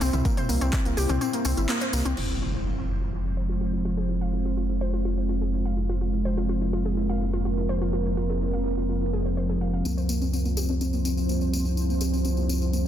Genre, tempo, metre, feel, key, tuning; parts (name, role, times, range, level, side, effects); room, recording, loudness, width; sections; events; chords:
melodic techno; 125 BPM; 4/4; straight; F harmonic minor; A4 = 444 Hz
deep dark ambient pad; sustained chords; 0.0-12.9 s; G3 to C5; -29 LUFS; right 2 dB; chorus, built-in reverb, sidechain pumping
warbly dusty pluck; arpeggios; 0.0-12.9 s; Bb3 to F5; -33 LUFS; left 1 dB; chorus, sidechain pumping, dub echo
round analog bass; bass; 0.0-12.9 s; F1 to C2; -27 LUFS; equal; sidechain pumping
deep house drum kit; drums; 0.0-2.3 s; crash cymbal, handclaps, hi-hat, toms; -32 LUFS; left 1 dB; sidechain pumping on hats, studio reverb, sidechain pumping on toms, sidechain pumping on cymbals
tambourine; percussion; 0.0-2.1, 9.9-12.8 s; -36 LUFS; left 4 dB
electronic kick drum; drums; 0.3-0.8 s; -26 LUFS; equal; studio reverb
analog drone; drone; 2.9-12.9 s; F2 to F3; -32 LUFS; equal; chorus, sidechain pumping
impact; sound effects; 2.2-4.1 s; -34 LUFS; equal
moderate scoring stage reverb, RT60 1.9 s; dense, heavily limited modern master; -24 LUFS; side -10 dB against mid
0.0-2.2 A section; 2.2-12.9 B section
drop 0.0-2.2; kick drops out 1.2-2.2; band accent 1.7; impact 2.2-4.1
0.0 C; 2.2 Fm; 9.9 C